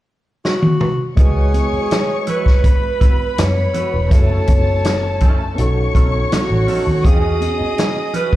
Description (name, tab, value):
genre	lush 1970s-style soul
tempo	82 BPM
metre	4/4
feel	straight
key	C# minor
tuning	A4 = 440 Hz
part	vintage drum kit	drums	0.4-8.4 s	hi-hat, kick drum, snare drum, toms	-15 LUFS	equal	none
part	clear alto saxophone	melody	0.5-8.4 s	F#4 to C#5	-22 LUFS	right 1 dB	slapback echo
part	dark studio string section	second line	1.2-8.4 s	A4 to D#6	-25 LUFS	left 1 dB	slapback echo
part	overdriven reed electric piano	accompaniment	1.2-8.4 s	G#3 to D#5	-26 LUFS	equal	fast tremolo, slapback echo
part	electric guitar through a small old amp	riff	1.2-8.4 s	C#4 to B4	-31 LUFS	right 5 dB	wah, spring reverb, slapback echo
part	vintage muted fingered electric bass	bass	1.2-7.6 s	E1 to F#2	-17 LUFS	equal	none
part	congas	percussion	1.5-8.3 s	none	-29 LUFS	right 3 dB	slapback echo
room	small room reverb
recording	live gig heard through the venue's PA, club reverb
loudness	-14 LUFS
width	side -15 dB against mid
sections	0.0-1.2 A section; 1.2-8.4 B section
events	drum fill 0.4-1.2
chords	0.0 N.C.; 1.2 C#m11; 4.1 F#m7; 5.6 B9; 7.0 E69